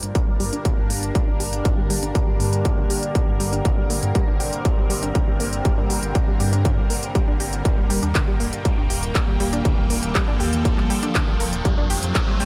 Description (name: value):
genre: melodic techno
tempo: 120 BPM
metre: 4/4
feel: straight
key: G minor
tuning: A4 = 442 Hz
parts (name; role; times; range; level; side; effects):
- lush unison pad; sustained chords; 0.0-12.5 s; G3 to G5; -32 LUFS; equal; chorus, phaser, sidechain pumping
- swelling detuned saw bass; bass; 0.0-12.5 s; D1 to G2; -29 LUFS; equal; sidechain pumping
- overtone-sweeping drone; drone; 0.3-12.5 s; G2 to D3; -37 LUFS; equal; none
- techno drum kit; drums; 0.0-12.5 s; handclaps, hi-hat; -30 LUFS; equal; none
- riser; sound effects; 5.5-12.5 s; none; -37 LUFS; equal; none
- deep dark ambient pad; texture; 0.0-12.5 s; Bb3 to A5; -34 LUFS; equal; chorus, built-in reverb, sidechain pumping
- electronic kick drum; drums; 0.2-12.3 s; none; -23 LUFS; equal; distortion
- analog pluck; arpeggios; 0.3-12.4 s; D3 to G4; -32 LUFS; equal; chorus, sidechain pumping, dub echo
room: little or no reverb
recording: none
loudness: -21 LUFS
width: mono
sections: 0.0-12.5 A section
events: build-up 0.0-12.5; filter sweep on synth pluck 0.0-12.5; riser 5.5-12.5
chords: 0.0 Gm; 7.7 Eb; 11.7 F